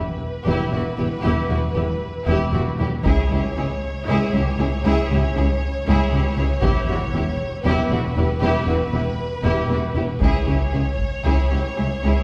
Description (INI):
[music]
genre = cinematic, epic orchestral film score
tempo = 233 BPM (eighths)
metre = 7/8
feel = straight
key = E dorian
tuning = A4 = 435 Hz
[part]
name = rich symphonic violin section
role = melody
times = 0.0-12.2 s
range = B4 to C#5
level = -32 LUFS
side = equal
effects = none
[part]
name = clear symphonic violin section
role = second line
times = 0.0-12.2 s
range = F#4 to G#4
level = -31 LUFS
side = equal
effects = none
[part]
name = clear symphonic viola section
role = accompaniment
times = 0.0-12.2 s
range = E4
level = -31 LUFS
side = equal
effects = none
[part]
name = clear symphonic double bass section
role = bass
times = 0.0-12.1 s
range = E1 to C#2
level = -25 LUFS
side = equal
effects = none
[part]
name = rich symphonic cello section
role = bass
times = 0.0-12.1 s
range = C#2 to E2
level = -26 LUFS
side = equal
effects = none
[part]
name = solo taiko drums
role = drums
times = 3.1-11.2 s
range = none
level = -28 LUFS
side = equal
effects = none
[sound]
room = wet scoring stage reverb, RT60 1.9 s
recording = heard from further back in the room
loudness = -21 LUFS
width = mono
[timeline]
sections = 0.0-12.2 A section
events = build-up 0.0-12.2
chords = 0.0 Em; 3.0 C#m; 6.6 Em; 10.2 C#m